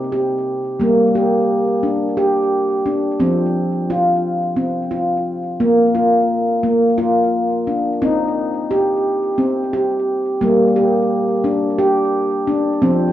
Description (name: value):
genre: world meditative, meditative tuned percussion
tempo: 175 BPM (eighths)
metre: 7/8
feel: straight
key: unclear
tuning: A4 = 440 Hz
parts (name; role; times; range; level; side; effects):
- handpan; solo; 0.0-13.1 s; C3 to G4; -15 LUFS; equal; tape echo
room: wet studio reverb, RT60 0.5 s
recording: worn, warbling old tape, cassette tape, warbly pitch drift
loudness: -15 LUFS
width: side -12 dB against mid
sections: 0.0-13.1 A section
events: none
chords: 0.0 C5; 0.8 Gm; 3.2 F5; 5.6 Bb; 8.0 Cm; 10.4 Gm